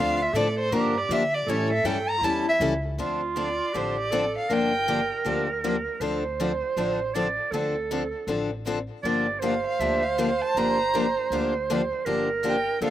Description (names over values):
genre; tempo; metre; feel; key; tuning
acoustic string swing (jazz manouche); 159 BPM; 4/4; swing 63% on 8ths; D minor; A4 = 440 Hz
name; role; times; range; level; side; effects
rich violin; melody; 0.0-5.3, 9.4-12.9 s; Bb4 to Bb5; -26 LUFS; equal; none
clear clarinet; second line; 0.0-12.9 s; E4 to D5; -27 LUFS; right 5 dB; slapback echo
picked steel-string acoustic guitar; accompaniment; 0.0-12.9 s; D3 to A4; -28 LUFS; left 5 dB; slapback echo
picked steel-string acoustic guitar; accompaniment; 0.0-12.9 s; D3 to A4; -35 LUFS; right 4 dB; none
upright bass; bass; 0.0-12.9 s; G1 to D3; -35 LUFS; equal; none
room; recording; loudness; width
little or no reverb; recorded outdoors, with no room sound; -23 LUFS; side -12 dB against mid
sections
0.0-3.0 A section; 3.0-12.9 B section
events
violin solo 0.0-3.0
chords
0.0 Dm7; 0.7 Gm7; 1.5 A7; 3.0 Dm7; 4.5 Gm7; 6.0 Dm7; 9.0 Gm7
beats
0.35 0.73 1.10 | 1.48 1.86 2.23 2.61 | 2.99 3.37 3.74 4.12 | 4.50 4.88 5.25 5.63 | 6.01 6.39 6.77 7.14 | 7.52 7.90 8.28 8.66 | 9.04 9.41 9.79 10.17 | 10.55 10.93 11.30 11.68 | 12.06 12.44 12.82